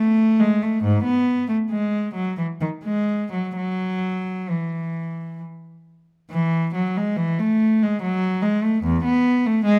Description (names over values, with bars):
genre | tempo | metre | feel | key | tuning
classical, baroque-style suite movement for unaccompanied cello | 61-74 BPM | 3/4 | rubato | E major | A4 = 441 Hz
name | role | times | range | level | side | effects
rich cello | solo | 0.0-9.8 s | E2 to B3 | -22 LUFS | equal | none
room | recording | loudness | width
light reverb | close, detailed microphones | -22 LUFS | mono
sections
0.0-6.3 A section; 6.3-9.8 B section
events
none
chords
none